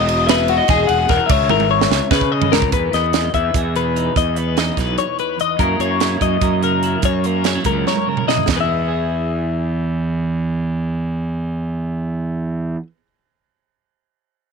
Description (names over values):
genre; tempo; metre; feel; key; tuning
math rock and midwest emo; 292 BPM (eighths); 7/8; straight; E lydian; A4 = 440 Hz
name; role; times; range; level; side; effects
electric guitar through a small old amp; melody; 0.0-2.3 s; D#5 to F#5; -20 LUFS; left 4 dB; none
twelve-string electric guitar; arpeggios; 0.0-12.9 s; F#4 to E5; -19 LUFS; left 13 dB; tape echo
fuzz fingered electric bass; bass; 0.0-12.7 s; E1 to C#3; -20 LUFS; right 2 dB; overdrive
crisp fusion drum kit; drums; 0.1-8.6 s; hi-hat, kick drum, ride cymbal, snare drum, toms; -20 LUFS; right 6 dB; none
electric guitar at the edge of break-up; accompaniment; 2.7-13.1 s; E2 to A#4; -26 LUFS; right 15 dB; wide subtle chorus
room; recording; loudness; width
light reverb, small room ambience; 1960s-style stereo with parts hard left and right; -16 LUFS; side -5 dB against mid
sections
0.0-2.7 A section; 2.7-8.5 B section; 8.5-11.4 C section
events
drum fill 1.5-2.7, 7.9-8.5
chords
0.0 Emaj9; 1.3 C#m9; 2.7 Emaj7; 5.6 F#7; 8.5 E